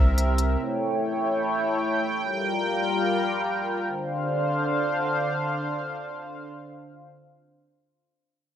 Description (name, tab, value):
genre	hip hop, atmospheric cloud-rap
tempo	free time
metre	none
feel	none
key	D minor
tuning	A4 = 440 Hz
part	sweeping resonant pad	sustained chords	0.0-7.1 s	C3 to G5	-24 LUFS	equal	chorus
part	long sustained 808-style bass	bass	0.0-0.6 s	C2	-22 LUFS	equal	none
part	downlifter	sound effects	0.0-0.6 s	none	barely audible	none	none
part	electronic hi-hat	drums	0.2-0.5 s	none	-21 LUFS	equal	none
room	light reverb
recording	rough home demo mix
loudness	-23 LUFS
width	side -9 dB against mid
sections	0.0-3.9 A section; 3.9-7.2 B section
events	none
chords	0.0 C7; 0.6 A7; 2.2 Gm7; 3.9 Dm7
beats	free time